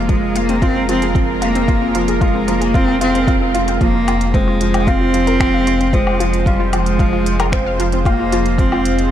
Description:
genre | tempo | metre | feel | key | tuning
piano and strings electronica | 113 BPM | 4/4 | straight | F minor | A4 = 439 Hz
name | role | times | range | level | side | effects
clear cello | melody | 0.0-9.1 s | G3 to C4 | -18 LUFS | equal | tape echo
lush unison pad | sustained chords | 0.0-9.1 s | Ab3 to C5 | -24 LUFS | equal | chorus, sidechain pumping
wide unison pluck | arpeggios | 0.0-8.8 s | C4 to F5 | -25 LUFS | left 4 dB | vintage 12-bit sampler grit, sidechain pumping, tape echo
clear upright piano | riff | 0.0-9.1 s | F3 to F4 | -21 LUFS | right 2 dB | tape echo
warm sub bass | bass | 0.0-9.1 s | F1 | -21 LUFS | equal | sidechain pumping
electronic kick drum | drums | 0.1-8.7 s | none | -17 LUFS | equal | none
organic electronic drum kit | drums | 0.1-9.1 s | finger snaps, hi-hat, woodblock | -26 LUFS | left 2 dB | none
room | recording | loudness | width
light reverb | dark, warm production | -13 LUFS | side -10 dB against mid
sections
0.0-3.8 A section; 3.8-9.1 B section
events
build-up 0.0-3.8; drop 3.8-9.1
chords
0.0 Fm

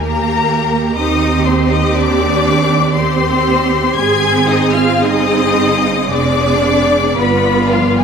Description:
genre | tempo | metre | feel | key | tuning
classical, slow romantic movement for string orchestra | 55-61 BPM | 3/4 | rubato | C minor | A4 = 437 Hz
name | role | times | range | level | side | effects
rich studio violin section | melody | 0.0-8.0 s | F5 to Ab6 | -18 LUFS | left 8 dB | none
clear studio violin section | second line | 0.0-8.0 s | F4 to Ab5 | -19 LUFS | left 3 dB | none
rich studio viola section | accompaniment | 0.0-8.0 s | Bb3 to Ab4 | -16 LUFS | right 1 dB | none
clear studio cello section | bass | 0.0-8.0 s | F3 to Ab4 | -19 LUFS | right 6 dB | none
warm studio double bass section | bass | 0.0-8.0 s | F1 to Eb2 | -18 LUFS | right 4 dB | none
room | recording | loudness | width
wet cathedral reverb, RT60 6.1 s | in a vast, echoing space | -11 LUFS | side -6 dB against mid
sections
0.0-8.0 A section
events
none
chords
0.0 Eb; 1.0 Cm/Eb; 4.0 Ab; 6.1 Dm7b5/F; 7.2 G7

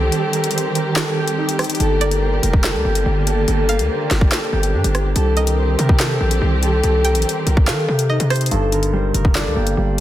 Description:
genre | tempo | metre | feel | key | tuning
hip hop, drill | 143 BPM | 4/4 | half-time | G minor | A4 = 439 Hz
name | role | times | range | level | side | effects
concert harp | melody | 0.0-10.0 s | D4 to C5 | -22 LUFS | left 2 dB | low-pass filter
dark symphonic string section | sustained chords | 0.0-8.5 s | D3 to G4 | -23 LUFS | right 3 dB | none
distorted 808-style bass | bass | 0.0-10.0 s | F1 to Eb3 | -18 LUFS | equal | distortion
drill drum kit | drums | 0.1-9.8 s | handclaps, hi-hat, kick drum, rim click, snare drum | -20 LUFS | equal | none
string-like resonator pluck | second line | 2.0-8.5 s | C5 to G5 | -28 LUFS | right 4 dB | chorus, tape echo
dark concert grand piano | accompaniment | 8.5-10.0 s | G2 to D4 | -21 LUFS | right 1 dB | low-pass filter
room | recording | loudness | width
digital ambience | dense, heavily limited modern master | -15 LUFS | side -13 dB against mid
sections
0.0-8.5 A section; 8.5-10.0 B section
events
break 0.1-1.8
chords
0.0 Cm; 1.8 Gm; 5.2 Cm; 8.5 Gm

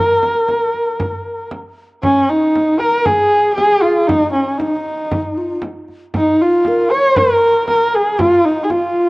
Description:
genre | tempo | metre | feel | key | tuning
mongolian traditional, Mongolian folk | 117 BPM | 4/4 | straight | Bb yu mode | A4 = 440 Hz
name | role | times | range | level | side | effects
warm horsehead fiddle | melody | 0.0-9.1 s | Db4 to Db5 | -14 LUFS | equal | cassette tape
breathy low xiao | second line | 0.0-9.1 s | Db4 to Db5 | -18 LUFS | left 1 dB | none
frame drum | percussion | 0.2-9.0 s | none | -24 LUFS | right 1 dB | none
room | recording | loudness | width
wet spring reverb, RT60 2.0 s | home recording on cassette | -12 LUFS | side -24 dB against mid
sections
0.0-2.0 A section; 2.0-9.1 B section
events
none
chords
none

